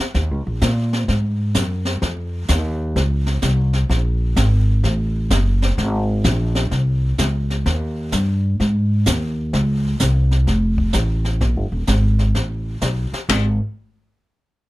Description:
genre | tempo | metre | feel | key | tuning
jazz piano trio | 128 BPM | 4/4 | swing 66% on 8ths | Ab major | A4 = 440 Hz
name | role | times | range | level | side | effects
upright bass | bass | 0.0-13.6 s | Eb1 to Bb2 | -17 LUFS | equal | none
jazz brush drum kit | drums | 0.1-13.7 s | brushed snare drum, hi-hat, kick drum, ride cymbal, snare drum | -23 LUFS | left 1 dB | none
room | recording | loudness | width
little or no reverb | close, detailed microphones | -17 LUFS | side -18 dB against mid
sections
0.0-9.5 A section; 9.5-13.3 B section; 13.3-14.7 C section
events
none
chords
none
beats
| 0.14 0.61 1.08 1.54 | 2.01 2.48 2.95 3.42 | 3.89 4.36 4.83 5.30 | 5.77 6.24 6.71 7.18 | 7.65 8.12 8.59 9.06 | 9.53 10.00 10.47 10.94 | 11.41 11.88 12.35 12.82 | 13.29

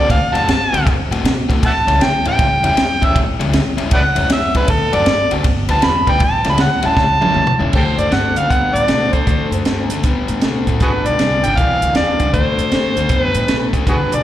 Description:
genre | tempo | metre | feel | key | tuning
electric blues shuffle | 157 BPM | 4/4 | swing 65% on 8ths | D mixolydian | A4 = 444 Hz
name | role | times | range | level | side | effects
overdriven harmonica | melody | 0.0-14.2 s | F#4 to B5 | -17 LUFS | equal | slapback echo
overdriven electric guitar | riff | 0.0-14.2 s | G2 to B4 | -21 LUFS | left 4 dB | slapback echo
upright bass | bass | 0.0-14.2 s | G1 to B2 | -20 LUFS | equal | none
compact cocktail drum kit | drums | 0.1-14.2 s | crash cymbal, hi-hat, kick drum, ride cymbal, snare drum, toms | -18 LUFS | right 1 dB | none
room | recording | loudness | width
light reverb, small room ambience | live gig heard through the venue's PA, recital hall reverb | -13 LUFS | side -12 dB against mid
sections
0.0-7.7 A section; 7.7-14.2 B section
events
harmonica solo 0.0-7.7; drum fill 7.0-7.7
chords
0.0 D7; 1.6 A7; 4.7 D7; 5.4 G7; 6.2 A7; 7.7 D7; 10.8 G7; 12.3 D7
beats
| 0.10 0.48 0.86 1.24 | 1.62 2.01 2.39 2.77 | 3.15 3.53 3.92 4.30 | 4.68 5.06 5.44 5.83 | 6.21 6.59 6.97 7.35 | 7.74 8.12 8.50 8.89 | 9.27 9.65 10.04 10.42 | 10.80 11.19 11.57 11.95 | 12.34 12.72 13.10 13.48 | 13.87

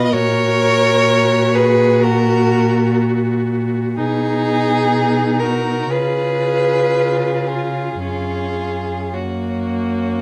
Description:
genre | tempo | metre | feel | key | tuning
classical, slow romantic movement for string quartet | 52-64 BPM | 4/4 | rubato | F# major | A4 = 439 Hz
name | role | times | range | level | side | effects
rich violin | melody | 0.0-10.2 s | C#4 to B4 | -26 LUFS | equal | none
rich violin | second line | 0.0-10.2 s | F#4 to D#5 | -20 LUFS | equal | none
rich viola | accompaniment | 0.0-10.2 s | A#3 to F#4 | -25 LUFS | equal | none
rich cello | bass | 0.0-10.2 s | F#2 to C#3 | -22 LUFS | equal | none
room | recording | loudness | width
moderate recital hall reverb, RT60 1.2 s | none | -17 LUFS | mono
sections
0.0-10.2 A section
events
none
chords
0.1 F#/A#; 4.0 G#m/B; 5.9 C#7; 8.0 F#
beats
| 0.12 1.08 2.03 3.00 | 3.97 4.92 5.90 6.93 | 8.02 9.14

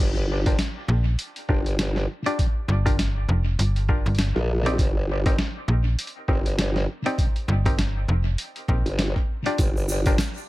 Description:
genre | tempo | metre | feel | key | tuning
glitch hop | 100 BPM | 4/4 | swing 58% on 16ths | G minor | A4 = 440 Hz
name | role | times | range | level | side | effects
muted clav | stabs | 0.0-10.2 s | C4 to D5 | -30 LUFS | left 1 dB | sidechain pumping, low-pass filter, dub echo
formant-sweep wobble bass | bass | 0.0-10.2 s | G1 to Bb1 | -24 LUFS | equal | chorus, overdrive
boom bap sampler-style drum kit | drums | 0.5-10.3 s | hi-hat, snare drum | -30 LUFS | equal | dub echo
electronic kick drum | drums | 0.5-10.2 s | none | -23 LUFS | equal | none
slap-like FM bass | bass | 0.9-8.8 s | F1 to Bb1 | -21 LUFS | equal | none
egg shaker | percussion | 9.6-10.5 s | none | -37 LUFS | right 2 dB | dub echo
room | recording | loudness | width
little or no reverb | echo-heavy mix | -21 LUFS | side -18 dB against mid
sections
0.0-10.5 A section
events
none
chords
0.0 Gm7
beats
0.59 1.19 1.79 | 2.39 2.99 3.59 4.19 | 4.79 5.39 5.99 6.59 | 7.19 7.79 8.39 8.99 | 9.59 10.19

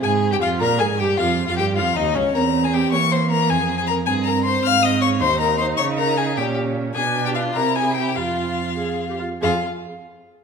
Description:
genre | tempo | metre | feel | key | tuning
quick classical-period movement for string quartet | 93-106 BPM (dotted quarters) | 6/8 | rubato | F minor | A4 = 440 Hz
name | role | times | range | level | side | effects
rich violin | melody | 0.0-9.7 s | Db5 to F6 | -23 LUFS | left 8 dB | none
clear violin | second line | 0.0-9.7 s | Db4 to F5 | -24 LUFS | left 3 dB | none
rich viola | accompaniment | 0.0-9.6 s | Bb3 to Bb4 | -24 LUFS | right 3 dB | none
clear cello | bass | 0.0-9.7 s | Db2 to E3 | -24 LUFS | right 5 dB | none
room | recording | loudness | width
wet recital hall reverb, RT60 1.6 s | none | -18 LUFS | side -6 dB against mid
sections
0.0-9.4 A section; 9.4-10.4 B section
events
none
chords
0.0 Fm; 1.2 Eb9; 2.4 C7/E; 3.5 F5; 4.6 Ab; 5.8 Absus24/Db; 6.4 Bbm6; 7.0 Bdim7; 7.5 C; 8.2 Fm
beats
| 0.01 0.61 | 1.19 1.77 | 2.35 2.93 | 3.50 4.07 | 4.64 5.21 | 5.79 6.37 | 6.95 7.55 | 8.16 8.78 | 9.42

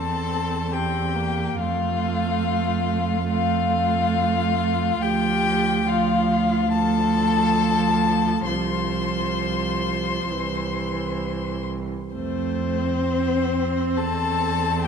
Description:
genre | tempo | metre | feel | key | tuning
classical, slow romantic movement for string quartet | 63-71 BPM | 4/4 | rubato | F major | A4 = 441 Hz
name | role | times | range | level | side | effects
clear violin | melody | 0.0-14.9 s | C5 to C6 | -25 LUFS | left 8 dB | none
clear violin | second line | 0.0-14.9 s | C4 to C5 | -29 LUFS | left 2 dB | none
clear viola | accompaniment | 0.0-14.9 s | E3 to C4 | -27 LUFS | right 6 dB | none
clear cello | bass | 0.0-14.9 s | C2 to F2 | -25 LUFS | right 3 dB | none
room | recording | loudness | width
wet concert hall reverb, RT60 2.2 s | dark, warm production | -20 LUFS | side -6 dB against mid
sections
0.0-14.9 A section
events
none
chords
0.0 C/E; 1.6 F; 5.0 Dm; 8.5 F5/C; 10.3 C; 12.2 F; 14.0 C/E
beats
0.72 | 1.60 2.46 3.31 4.17 | 5.03 5.88 6.74 7.59 | 8.47 9.39 10.31 11.24 | 12.16 13.05 13.97 14.85

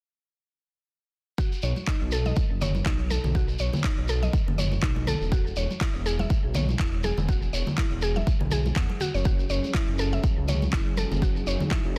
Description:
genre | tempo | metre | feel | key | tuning
afro house | 122 BPM | 4/4 | swing 56% on 16ths | unclear | A4 = 438 Hz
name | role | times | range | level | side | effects
mallet-like synth pluck | arpeggios | 1.4-11.8 s | D#4 to F#5 | -36 LUFS | equal | chorus, sidechain pumping, tape echo
electronic kick drum | drums | 1.4-11.8 s | none | -28 LUFS | equal | small room reverb
shekere | percussion | 1.4-11.8 s | none | -40 LUFS | equal | none
dark detuned saw bass | bass | 1.6-12.0 s | E1 to E2 | -30 LUFS | equal | sidechain pumping
congas | percussion | 1.8-11.7 s | none | -34 LUFS | equal | none
electronic handclaps | drums | 1.9-11.8 s | none | -38 LUFS | equal | small room reverb
warm analog pad | sustained chords | 9.3-12.0 s | F#3 to G#4 | -36 LUFS | equal | chorus, sidechain pumping
room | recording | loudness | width
little or no reverb | dense, heavily limited modern master | -26 LUFS | mono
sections
1.4-12.0 A section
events
none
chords
1.4 B7; 5.3 Eadd9; 9.3 F#m7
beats
| 1.39 1.88 2.37 2.86 | 3.35 3.84 4.34 4.83 | 5.32 5.81 6.30 6.79 | 7.29 7.78 8.27 8.76 | 9.25 9.75 10.24 10.73 | 11.22 11.71

